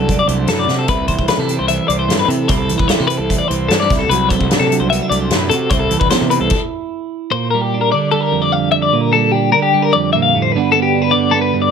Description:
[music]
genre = math rock and midwest emo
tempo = 149 BPM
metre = 4/4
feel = straight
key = unclear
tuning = A4 = 440 Hz
[part]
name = twelve-string electric guitar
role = accompaniment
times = 0.0-11.7 s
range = F2 to F#4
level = -18 LUFS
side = right 8 dB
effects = plate reverb
[part]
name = twelve-string electric guitar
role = arpeggios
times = 0.0-11.7 s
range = G4 to F5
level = -16 LUFS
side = left 7 dB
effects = tremolo, plate reverb
[part]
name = fuzz fingered electric bass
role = bass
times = 0.0-6.5 s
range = C2 to C3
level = -20 LUFS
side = equal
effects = overdrive
[part]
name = loose indie drum kit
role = drums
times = 0.1-6.6 s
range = crash cymbal, hi-hat, kick drum, snare drum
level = -19 LUFS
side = left 1 dB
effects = none
[sound]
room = moderate studio reverb, RT60 0.5 s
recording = none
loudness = -12 LUFS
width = side -6 dB against mid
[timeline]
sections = 0.0-7.3 A section; 7.3-11.7 B section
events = drum fill 0.7; stop 6.5-7.3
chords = 0.0 Bm7/C (rootless); 0.9 C6; 3.9 Bm7/C; 5.7 Cmaj7; 7.3 Bb6; 10.5 Gmaj9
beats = 0.08 0.48 | 0.88 1.28 1.68 2.09 | 2.49 2.89 3.29 3.69 | 4.09 4.50 4.90 5.30 | 5.71 6.11 6.51 6.91 | 7.32 7.72 8.12 8.52 | 8.92 9.32 9.72 10.12 | 10.53 10.93 11.33

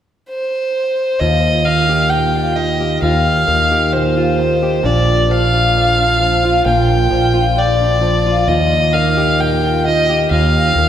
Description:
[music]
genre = acoustic folk duo or small band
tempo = 66 BPM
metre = 4/4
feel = straight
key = Eb major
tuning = A4 = 440 Hz
[part]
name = dark fiddle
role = melody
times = 0.3-10.9 s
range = C5 to G5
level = -16 LUFS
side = left 1 dB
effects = none
[part]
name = fingerpicked old ladder-braced acoustic guitar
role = accompaniment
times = 1.2-10.9 s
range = Eb2 to G4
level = -18 LUFS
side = equal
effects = none
[part]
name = fingered electric bass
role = bass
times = 1.2-10.9 s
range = Bb1 to Eb2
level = -17 LUFS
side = right 1 dB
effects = none
[sound]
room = wet church reverb, RT60 3.5 s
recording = recorded in a church or concert hall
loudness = -12 LUFS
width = side -10 dB against mid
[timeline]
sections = 0.0-1.2 A section; 1.2-10.9 B section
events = none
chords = 0.0 N.C.; 1.2 Ebadd9; 4.8 Bb; 8.5 Ebadd9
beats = 0.29 | 1.20 2.11 3.02 3.93 | 4.84 5.75 6.66 7.57 | 8.48 9.39 10.30

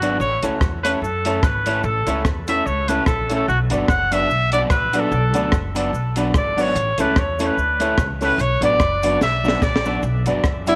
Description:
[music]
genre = ska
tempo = 146 BPM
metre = 4/4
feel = swing 57% on 8ths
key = B minor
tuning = A4 = 440 Hz
[part]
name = warm trumpet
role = melody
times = 0.0-10.0 s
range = F#4 to F#5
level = -24 LUFS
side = equal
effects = tape echo
[part]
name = electric guitar at the edge of break-up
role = accompaniment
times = 0.0-10.8 s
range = F#3 to A4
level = -29 LUFS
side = equal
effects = none
[part]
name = warm upright piano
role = stabs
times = 0.0-10.8 s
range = C#4 to D5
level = -27 LUFS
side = equal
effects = none
[part]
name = upright bass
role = bass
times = 0.0-10.8 s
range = F#1 to F#2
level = -27 LUFS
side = equal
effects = none
[part]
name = compact cocktail drum kit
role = drums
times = 0.0-10.8 s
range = hi-hat, kick drum, rim click, snare drum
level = -24 LUFS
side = equal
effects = none
[part]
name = cabasa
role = percussion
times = 0.0-10.8 s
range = none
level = -46 LUFS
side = equal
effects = none
[part]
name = raspy tenor saxophone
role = melody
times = 10.7-10.8 s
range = E4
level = -17 LUFS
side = equal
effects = none
[sound]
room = light reverb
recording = none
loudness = -19 LUFS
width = mono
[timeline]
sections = 0.0-10.0 A section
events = trumpet solo 0.0-10.0; drum fill 9.2-10.0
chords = 0.2 A; 3.5 Bm; 6.8 A; 8.4 Bm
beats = | 0.20 0.61 1.02 1.43 | 1.84 2.25 2.66 3.07 | 3.48 3.89 4.30 4.71 | 5.12 5.53 5.94 6.35 | 6.76 7.17 7.58 7.99 | 8.39 8.80 9.21 9.62 | 10.03 10.44

